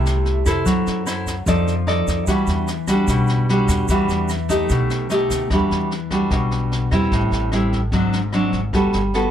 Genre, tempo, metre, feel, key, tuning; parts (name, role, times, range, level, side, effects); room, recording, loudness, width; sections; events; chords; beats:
bossa nova; 149 BPM; 4/4; straight; E minor; A4 = 441 Hz
nylon-string guitar; accompaniment; 0.0-9.3 s; G#2 to D5; -19 LUFS; equal
upright bass; bass; 0.0-9.3 s; G1 to F#2; -23 LUFS; equal
jazz brush drum kit; drums; 0.1-9.2 s; kick drum, rim click, snare drum; -27 LUFS; equal
egg shaker; percussion; 0.1-5.5 s; -34 LUFS; right 6 dB
little or no reverb; close, detailed microphones, lossy compression artefacts; -17 LUFS; side -10 dB against mid
0.0-5.5 A section; 5.5-9.3 B section
0.0 Fmaj9; 0.7 F#m7b5; 1.5 F6; 2.3 Em9; 4.7 B7alt; 5.5 Em9; 7.1 Am7; 7.9 G#7#11; 8.7 Gmaj9
0.26 | 0.67 1.07 1.48 1.88 | 2.28 2.69 3.09 3.49 | 3.90 4.30 4.70 5.11 | 5.51 5.92 6.32 6.72 | 7.13 7.53 7.93 8.34 | 8.74 9.14